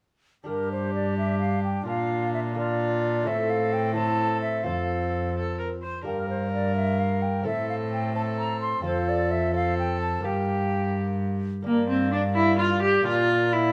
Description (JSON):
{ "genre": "classical, renaissance-style consort dance", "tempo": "86 BPM (dotted quarters)", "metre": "6/8", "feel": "straight", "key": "G dorian", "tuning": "A4 = 441 Hz", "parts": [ { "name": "lute", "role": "accompaniment", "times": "0.4-13.7 s", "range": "F2 to C5", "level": "-35 LUFS", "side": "equal", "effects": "none" }, { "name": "hollow concert flute", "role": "melody", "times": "0.5-13.7 s", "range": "Bb4 to C6", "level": "-32 LUFS", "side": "equal", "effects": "none" }, { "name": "rich viola", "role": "second line", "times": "0.5-13.7 s", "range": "Bb3 to C5", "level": "-30 LUFS", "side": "equal", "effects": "none" }, { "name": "mellow bassoon", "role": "accompaniment", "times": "0.5-13.7 s", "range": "Bb3 to D4", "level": "-36 LUFS", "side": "equal", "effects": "none" }, { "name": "rich cello", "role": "bass", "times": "0.5-13.7 s", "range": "F2 to Bb2", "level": "-31 LUFS", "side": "equal", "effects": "none" } ], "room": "moderate stone room reverb, RT60 1.4 s", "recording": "none", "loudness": "-26 LUFS", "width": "mono", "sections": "0.5-11.7 A section; 11.7-13.7 A section", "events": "none", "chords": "0.5 Gm; 1.9 Bb; 3.3 Am; 4.7 F; 6.1 Gm; 7.5 Am; 8.8 F; 10.2 Gm; 13.1 Bb" }